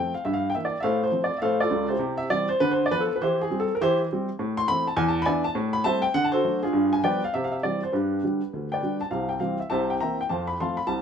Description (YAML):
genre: jazz, stride piano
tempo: 203 BPM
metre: 4/4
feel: swing 65% on 8ths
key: C major from 4.4 s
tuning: A4 = 440 Hz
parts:
  - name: warm upright piano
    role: solo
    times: 0.0-11.0 s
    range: C2 to C6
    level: -22 LUFS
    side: equal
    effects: none
room: moderate studio reverb, RT60 0.9 s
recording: band playing live in one room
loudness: -22 LUFS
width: side -7 dB against mid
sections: 0.0-9.1 A section; 9.1-11.0 B section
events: none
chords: 0.2 Edim/G; 0.8 F/A; 2.0 C; 2.6 Bdim/D; 3.2 C/E; 4.4 Am; 5.0 E5; 5.6 Am7; 6.2 D7; 6.8 G7; 7.3 C; 7.9 G; 9.1 C; 9.7 C7; 10.3 F